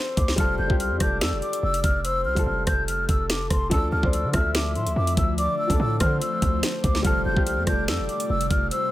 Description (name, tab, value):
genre	hip hop, drill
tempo	144 BPM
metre	4/4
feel	half-time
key	unclear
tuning	A4 = 440 Hz
part	breathy flute-like synth lead	second line	0.0-8.9 s	A4 to E5	-31 LUFS	left 2 dB	chorus, digital delay
part	dark baby grand piano	accompaniment	0.0-8.9 s	F3 to C5	-31 LUFS	left 2 dB	none
part	mellow hollow concert flute	melody	0.2-8.9 s	C6 to G6	-27 LUFS	equal	none
part	hard-hitting 808-style bass	bass	0.2-8.7 s	F1 to D3	-26 LUFS	equal	none
part	drill drum kit	drums	0.2-8.8 s	finger snaps, hi-hat, kick drum, rim click, snare drum	-24 LUFS	equal	none
part	ethereal airy pad	sustained chords	4.5-8.9 s	C3 to F4	-32 LUFS	equal	ensemble chorus, built-in reverb
room	light reverb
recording	none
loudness	-21 LUFS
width	side -15 dB against mid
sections	0.0-8.9 A section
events	kick muted 8.7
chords	0.4 Fadd9; 3.7 Dm; 7.0 Fadd9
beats	| 0.38 0.80 1.21 1.63 | 2.05 2.46 2.88 3.30 | 3.71 4.13 4.55 4.96 | 5.38 5.80 6.21 6.63 | 7.05 7.46 7.88 8.30 | 8.71